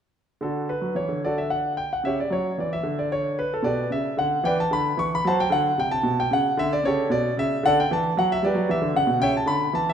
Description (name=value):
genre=classical, baroque-style suite movement for grand piano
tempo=75 BPM (dotted quarters)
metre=6/8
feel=rubato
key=D major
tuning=A4 = 440 Hz
part: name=warm concert grand piano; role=solo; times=0.4-9.9 s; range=B2 to C#6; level=-21 LUFS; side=equal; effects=none
room=wet recital hall reverb, RT60 1.8 s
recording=minimal, uncompressed stereo recording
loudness=-21 LUFS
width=side -8 dB against mid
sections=0.4-9.9 A section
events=none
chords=0.4 D; 2.0 C#dim; 2.8 N.C.; 3.6 G/B; 5.2 D7; 6.0 Bm11; 6.8 A7; 7.6 D; 8.4 Em7; 9.2 C#m7b5